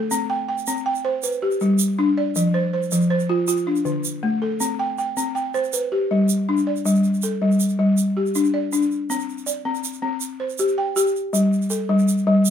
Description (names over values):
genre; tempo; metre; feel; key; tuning
west african traditional, West African string and xylophone music; 107 BPM (dotted quarters); 12/8; straight; unclear; A4 = 440 Hz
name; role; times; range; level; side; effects
balafon; arpeggios; 0.0-12.5 s; D3 to G5; -19 LUFS; left 1 dB; none
egg shaker; percussion; 0.1-12.5 s; none; -28 LUFS; right 7 dB; none
room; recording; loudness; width
light reverb; minimal, uncompressed stereo recording; -19 LUFS; side -8 dB against mid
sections
0.0-6.9 A section; 6.9-12.5 B section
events
none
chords
0.1 C5; 1.2 G; 2.4 F5; 3.5 Dm; 4.6 C5; 5.7 G; 6.9 G5; 9.1 C5; 11.3 G5